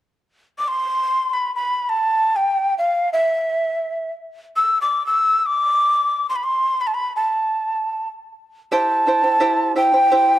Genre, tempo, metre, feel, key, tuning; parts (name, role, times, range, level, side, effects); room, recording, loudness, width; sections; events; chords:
andean folk; free time; A4 = 440 Hz
breathy mellow large quena; melody; 0.6-10.4 s; E5 to E6; -17 LUFS; equal; analog delay
charango; accompaniment; 8.7-10.4 s; E4 to G5; -21 LUFS; right 1 dB
moderate spring reverb, RT60 1.2 s, small room ambience; -17 LUFS; side -13 dB against mid
0.3-8.7 A section; 8.7-10.4 B section
0.3 N.C.; 8.7 C